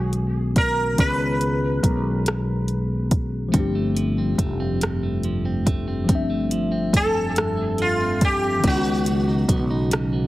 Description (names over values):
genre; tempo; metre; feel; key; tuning
slow six-eight R&B; 47 BPM (dotted quarters); 6/8; straight; unclear; A4 = 440 Hz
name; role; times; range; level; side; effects
sitar; melody; 0.0-2.2, 7.0-10.3 s; F4 to B4; -24 LUFS; equal; tape echo
mellow tine electric piano; accompaniment; 0.0-10.3 s; D#3 to E5; -26 LUFS; left 3 dB; wide subtle chorus
fretless electric bass; bass; 0.0-10.3 s; F1 to C#2; -25 LUFS; equal; none
smooth R&B drum kit; drums; 0.1-10.1 s; hi-hat, kick drum, rim click; -21 LUFS; equal; overdrive
clean electric guitar; second line; 3.5-10.3 s; G2 to D#4; -28 LUFS; right 3 dB; none
room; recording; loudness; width
light reverb; heavily compressed radio sound; -19 LUFS; side -16 dB against mid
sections
0.0-10.3 A section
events
none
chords
0.0 C#9sus4; 3.5 G9sus4; 8.6 C#9sus4